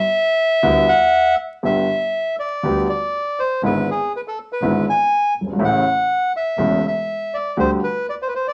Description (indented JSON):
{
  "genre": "tango",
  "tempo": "121 BPM",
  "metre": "4/4",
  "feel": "rubato",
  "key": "G major",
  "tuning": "A4 = 436 Hz",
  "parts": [
    { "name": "bandoneon", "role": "melody", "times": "0.0-8.5 s", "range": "G#4 to G#5", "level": "-20 LUFS", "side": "equal", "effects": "none" },
    { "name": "warm concert grand piano", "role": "accompaniment", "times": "0.6-7.8 s", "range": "E1 to G4", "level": "-22 LUFS", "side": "equal", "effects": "none" },
    { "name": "clear double bass", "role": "bass", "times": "0.6-7.8 s", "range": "E1 to D2", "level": "-32 LUFS", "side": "equal", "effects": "none" }
  ],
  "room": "moderate studio reverb, RT60 0.6 s",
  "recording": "vinyl crackle, nothing above 10.6 kHz",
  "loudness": "-19 LUFS",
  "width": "mono",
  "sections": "0.0-1.6 A section; 1.6-8.5 B section",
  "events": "none",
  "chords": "0.0 G6; 1.6 G; 3.6 E7/G#; 5.6 A; 7.6 Dsus4"
}